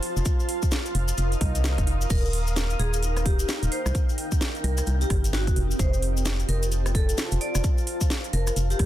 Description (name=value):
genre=UK garage, two-step garage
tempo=130 BPM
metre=4/4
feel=swing 61% on 16ths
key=unclear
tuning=A4 = 440 Hz
part: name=house drum kit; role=drums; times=0.0-8.9 s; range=crash cymbal, hi-hat, rim click, snare drum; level=-31 LUFS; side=right 1 dB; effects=none
part: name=granular cloud pad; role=texture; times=0.0-8.9 s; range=C4 to Eb6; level=-32 LUFS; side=equal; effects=built-in reverb, sidechain pumping
part: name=organ-like FM bass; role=bass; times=0.2-8.9 s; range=Eb1 to C2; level=-24 LUFS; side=equal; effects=none
part: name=cabasa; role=percussion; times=0.2-8.8 s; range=none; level=-36 LUFS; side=left 5 dB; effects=none
part: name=electronic kick drum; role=drums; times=0.3-8.9 s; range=none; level=-24 LUFS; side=equal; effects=none
part: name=swell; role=sound effects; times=1.3-2.1 s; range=none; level=-36 LUFS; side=right 1 dB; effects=none
part: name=vibraphone with medium hard mallets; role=melody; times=2.1-8.9 s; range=Gb4 to D5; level=-33 LUFS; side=equal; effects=digital delay
room=little or no reverb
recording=dense, heavily limited modern master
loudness=-22 LUFS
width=side -13 dB against mid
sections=0.0-8.9 A section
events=swell 1.3-2.1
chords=0.0 Bbsus24/F; 2.1 Ebadd9; 3.7 Cm7; 5.6 F7; 7.4 Bbsus24/F